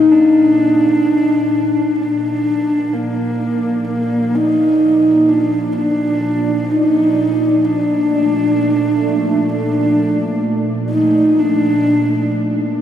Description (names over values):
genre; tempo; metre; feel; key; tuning
ambient; 64 BPM; 4/4; straight; Bb major; A4 = 443 Hz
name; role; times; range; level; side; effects
dark horsehead fiddle; melody; 0.0-12.3 s; Bb3 to Eb4; -13 LUFS; equal; diffuse ambient delay
sweeping resonant pad; sustained chords; 0.0-12.8 s; Bb2 to D5; -21 LUFS; right 1 dB; chorus
room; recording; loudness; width
wet huge ambient reverb, RT60 7.5 s; none; -13 LUFS; side -10 dB against mid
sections
0.1-12.8 A section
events
fade-in on analog synth pad 0.1-12.8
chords
0.1 Bb